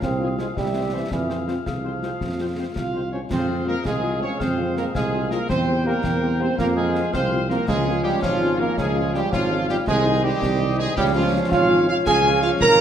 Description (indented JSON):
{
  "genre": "military-style march for wind band",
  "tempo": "110 BPM (dotted quarters)",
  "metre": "6/8",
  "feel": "straight",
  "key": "F minor",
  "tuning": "A4 = 440 Hz",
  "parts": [
    { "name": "clear euphonium", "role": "second line", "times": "0.0-12.8 s", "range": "E3 to Bb4", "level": "-23 LUFS", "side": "right 2 dB", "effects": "none" },
    { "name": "warm woodwind section", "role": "second line", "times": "0.0-12.8 s", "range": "G4 to G5", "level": "-29 LUFS", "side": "left 2 dB", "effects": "none" },
    { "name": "dark tuba", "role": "bass", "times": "0.0-12.8 s", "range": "Ab1 to F2", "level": "-25 LUFS", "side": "right 2 dB", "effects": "none" },
    { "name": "concert snare drum, concert bass drum and clash cymbals", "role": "drums", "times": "0.0-12.8 s", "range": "none", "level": "-31 LUFS", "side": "left 2 dB", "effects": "none" },
    { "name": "bright trumpet section", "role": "melody", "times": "0.2-12.8 s", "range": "F4 to Bb5", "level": "-28 LUFS", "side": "equal", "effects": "none" },
    { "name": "warm French horn section", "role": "accompaniment", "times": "0.2-12.5 s", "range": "G3 to G4", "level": "-31 LUFS", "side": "left 5 dB", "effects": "none" },
    { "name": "warm trombone section", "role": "sustained chords", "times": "3.3-12.8 s", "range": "Eb3 to Db4", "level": "-29 LUFS", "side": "right 1 dB", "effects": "none" }
  ],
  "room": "wet recital hall reverb, RT60 1.6 s",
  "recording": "none",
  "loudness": "-19 LUFS",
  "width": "side -9 dB against mid",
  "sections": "0.0-3.3 A section; 3.3-12.8 B section",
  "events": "none",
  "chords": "0.0 Fm/C; 0.6 C; 1.1 Fm; 5.5 C/E; 6.6 Fm; 7.7 Db; 9.9 Ab/C; 11.0 Db",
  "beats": "| 0.02 0.57 | 1.12 1.66 | 2.21 2.76 | 3.31 3.85 | 4.40 4.95 | 5.49 6.04 | 6.59 7.13 | 7.68 8.23 | 8.78 9.32 | 9.87 10.42 | 10.96 11.51 | 12.06 12.61"
}